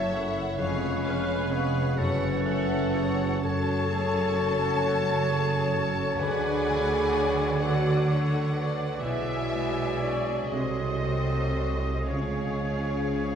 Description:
classical, slow romantic movement for symphony orchestra; 36-44 BPM (dotted quarters); 6/8; rubato; F# minor from 3.4 s; A4 = 443 Hz
rich studio violin section; melody; 0.0-13.4 s; Eb5 to A5; -38 LUFS; left 3 dB
mellow clarinet; second line; 0.0-13.4 s; F#4 to C#5; -37 LUFS; right 1 dB
warm oboe; second line; 0.0-13.4 s; A4 to Eb5; -36 LUFS; right 1 dB
warm studio violin section; second line; 0.0-13.4 s; G#4 to A5; -36 LUFS; left 2 dB
dark bassoon; accompaniment; 0.0-13.4 s; E3 to A3; -36 LUFS; right 2 dB
warm studio viola section; accompaniment; 0.0-13.4 s; F#4 to F#5; -35 LUFS; right 1 dB
mellow French horn section; sustained chords; 0.0-13.4 s; G#3 to A4; -30 LUFS; left 2 dB
concert harp; arpeggios; 0.0-13.4 s; E#2 to F#5; -35 LUFS; left 4 dB
rich studio cello section; bass; 0.0-13.4 s; E#2 to D3; -33 LUFS; right 1 dB
warm studio double bass section; bass; 0.0-13.4 s; E#1 to D2; -31 LUFS; right 2 dB
wet scoring stage reverb, RT60 1.9 s; heard from further back in the room; -24 LUFS; side -8 dB against mid
0.0-13.4 A section
0.0 F#m; 0.6 C#7/E#; 2.0 F#m7; 3.4 F#m; 6.2 Dmaj7; 9.0 G#m7b5/B; 10.5 Cdim7; 12.1 C#

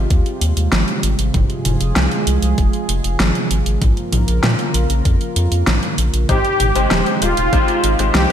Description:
synthwave; 97 BPM; 4/4; straight; Ab major; A4 = 440 Hz
warm analog pad; sustained chords; 0.0-8.3 s; C3 to G5; -23 LUFS; right 2 dB; chorus, sidechain pumping
round analog bass; bass; 0.0-8.3 s; Eb1 to Bb2; -18 LUFS; equal
electronic kick drum; drums; 0.1-7.7 s; -17 LUFS; equal; overdrive
pop drum kit; drums; 0.1-8.3 s; hi-hat, snare drum, toms; -20 LUFS; equal; overdrive, gated reverb
soft supersaw; melody; 6.3-8.3 s; F4 to G4; -17 LUFS; equal; ping-pong delay
clear concert grand piano; stabs; 6.3-8.3 s; Ab3 to C5; -21 LUFS; left 4 dB; analog chorus
light reverb, digital ambience; bright 1980s-style digital production; -14 LUFS; side -9 dB against mid
0.0-8.3 A section
0.0 Abmaj7; 1.3 Fm; 3.8 Bbm; 6.3 Abmaj7

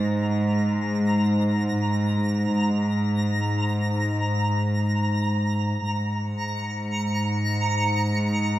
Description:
ambient; free time; A4 = 441 Hz
warm symphonic cello section; bass; 0.0-8.6 s; G#2; -22 LUFS; equal
twinkling granular texture; texture; 0.0-8.6 s; A#5 to C#7; -29 LUFS; right 1 dB; built-in reverb
light reverb; cassette tape; -22 LUFS; side -14 dB against mid
0.0-8.6 A section
0.0 G#sus2

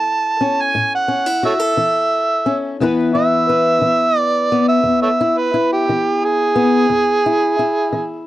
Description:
acoustic country blues, solo or duo; 58 BPM (dotted quarters); 12/8; straight; E major; A4 = 440 Hz
overdriven harmonica; melody; 0.0-8.2 s; G4 to A5; -16 LUFS; right 2 dB
fingerpicked swing-style acoustic guitar; accompaniment; 0.0-8.3 s; E2 to B4; -18 LUFS; left 3 dB
light reverb; dry, close 1970s-style studio recording, vinyl crackle; -14 LUFS; side -15 dB against mid
0.0-8.3 A section
harmonica solo 0.0-8.3
0.0 A; 2.8 E

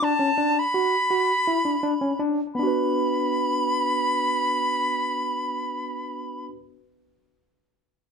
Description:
progressive instrumental, progressive; 166 BPM; 5/4; straight; B minor; A4 = 442 Hz
bright reedy silver concert flute; melody; 0.0-6.5 s; A5 to B5; -24 LUFS; equal
barky tine electric piano; arpeggios; 0.0-6.6 s; B3 to B4; -25 LUFS; equal; medium stereo tremolo, ping-pong delay
wet studio reverb, RT60 0.5 s; -21 LUFS; side -6 dB against mid
0.0-2.6 A section; 2.6-6.2 B section
0.0 D; 2.6 Bm

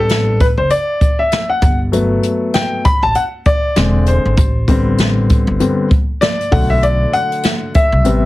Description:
hip hop, jazz-hop; 98 BPM; 4/4; swing 59% on 16ths; A dorian; A4 = 440 Hz
warm grand piano; accompaniment; 0.0-8.3 s; C3 to B5; -15 LUFS; left 2 dB
upright bass; bass; 0.0-8.3 s; E1 to C2; -16 LUFS; equal
jazz brush drum kit; drums; 0.1-8.2 s; hi-hat, kick drum, snare drum; -15 LUFS; equal
light reverb; heavily compressed radio sound, multiband compression; -12 LUFS; side -17 dB against mid
0.0-8.3 A section
grand piano solo 0.0-8.3
0.0 Am11; 1.6 Gmaj9; 3.8 Eaug7; 4.4 Am11; 6.5 Bm7

